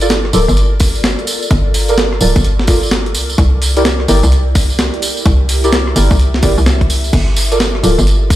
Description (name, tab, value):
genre	UK garage, two-step garage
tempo	128 BPM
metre	4/4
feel	swing 64% on 16ths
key	G dorian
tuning	A4 = 440 Hz
part	ethereal airy pad	sustained chords	0.0-8.4 s	E4 to E5	-24 LUFS	equal	ensemble chorus, built-in reverb, phaser, sidechain pumping
part	deep mellow chord stab	stabs	0.0-7.9 s	E4 to D5	-17 LUFS	right 1 dB	chorus, tape echo
part	hollow knocking FM bass	bass	0.0-8.4 s	D1 to C2	-13 LUFS	equal	none
part	breakbeat sampler-style drum kit	drums	0.0-8.4 s	crash cymbal, hi-hat, rim click, snare drum	-18 LUFS	equal	overdrive
part	tambourine	percussion	0.0-8.4 s	none	-22 LUFS	right 3 dB	none
part	electronic kick drum	drums	0.8-8.4 s	none	-12 LUFS	equal	overdrive
room	light reverb, digital ambience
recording	played on a big sound system in a bare room, stone room reverb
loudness	-10 LUFS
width	side -14 dB against mid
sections	0.0-8.4 A section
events	none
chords	0.0 Gm7; 3.1 C7; 7.1 Gm7